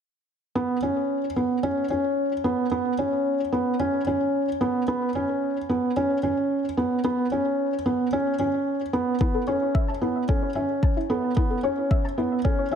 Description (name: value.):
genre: piano and strings electronica.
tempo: 111 BPM.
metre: 4/4.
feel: straight.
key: unclear.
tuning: A4 = 440 Hz.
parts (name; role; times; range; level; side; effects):
felt-muted upright piano; riff; 0.6-12.8 s; B3 to C#4; -23 LUFS; right 1 dB; ping-pong delay.
soft round pluck; arpeggios; 9.2-12.8 s; E4 to A5; -30 LUFS; left 4 dB; wide subtle chorus, sidechain pumping, ping-pong delay.
electronic kick drum; drums; 9.2-12.6 s; none; -23 LUFS; left 1 dB; none.
room: moderate lush hall reverb, RT60 1.9 s, studio reverb.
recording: none.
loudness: -22 LUFS.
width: side -7 dB against mid.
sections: 0.6-12.8 A section.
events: none.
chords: 0.6 Bsus2; 9.2 A.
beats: | 0.56 1.10 1.64 2.18 | 2.72 3.26 3.80 4.34 | 4.88 5.42 5.96 6.50 | 7.04 7.58 8.13 8.67 | 9.21 9.75 10.29 10.83 | 11.37 11.91 12.45.